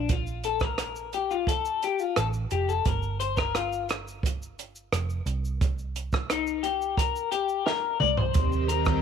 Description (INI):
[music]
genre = indie pop, bedroom pop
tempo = 87 BPM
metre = 4/4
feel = straight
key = unclear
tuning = A4 = 440 Hz
[part]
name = electric guitar through a small old amp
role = accompaniment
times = 0.0-9.0 s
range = D4 to D5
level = -27 LUFS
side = left 10 dB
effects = lush chorus, vibrato effect
[part]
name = vintage muted picked electric bass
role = bass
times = 0.0-9.0 s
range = F1 to Eb2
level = -31 LUFS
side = right 2 dB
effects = none
[part]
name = compact cocktail drum kit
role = drums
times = 0.1-9.0 s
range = hi-hat, kick drum, rim click, shaker, snare drum, toms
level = -28 LUFS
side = right 3 dB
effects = none
[part]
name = string machine, full ensemble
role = sustained chords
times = 8.4-9.0 s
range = Eb3 to G4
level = -28 LUFS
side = right 3 dB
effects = phaser, ensemble chorus
[sound]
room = small room reverb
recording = 1960s-style stereo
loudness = -25 LUFS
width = side -7 dB against mid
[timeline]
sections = 0.0-9.0 A section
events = clean electric guitar solo 0.0-9.0; drum fill 7.7-8.4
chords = 0.0 Bb5; 2.9 Fsus24; 5.3 Cm; 8.4 Eb6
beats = | 0.10 0.79 1.48 2.17 | 2.86 3.55 4.24 4.93 | 5.61 6.30 6.99 7.67 | 8.36